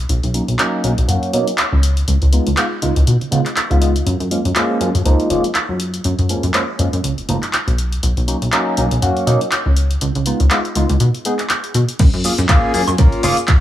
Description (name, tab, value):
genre	filtered disco house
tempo	121 BPM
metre	4/4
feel	swing 56% on 16ths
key	F# major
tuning	A4 = 439 Hz
part	plucky analog bass	bass	0.0-13.3 s	F#1 to C#3	-16 LUFS	equal	sidechain pumping, low-pass filter
part	punchy analog drum machine	drums	0.1-13.6 s	crash cymbal, handclaps, hi-hat, ride cymbal, shaker, woodblock	-21 LUFS	equal	sidechain pumping on hats, sidechain pumping on cymbals, sidechain pumping on perc
part	barky tine electric piano	accompaniment	0.3-13.4 s	E#3 to A#4	-20 LUFS	equal	medium stereo tremolo, phaser, sidechain pumping, low-pass filter
part	electronic kick drum	drums	12.0-13.6 s	none	-12 LUFS	equal	none
room	light reverb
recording	none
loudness	-14 LUFS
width	side -12 dB against mid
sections	0.0-12.0 A section; 12.0-13.6 B section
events	filter sweep 0.0-12.0; drop 12.0-13.6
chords	0.0 Bmaj7; 1.8 C#7; 4.1 F#maj7; 7.8 Bmaj7; 9.8 C#7; 12.0 F#maj7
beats	| 0.10 0.59 1.09 1.58 | 2.08 2.58 3.07 3.57 | 4.06 4.56 5.06 5.55 | 6.05 6.54 7.04 7.54 | 8.03 8.53 9.02 9.52 | 10.02 10.51 11.01 11.50 | 12.00 12.49 12.99 13.49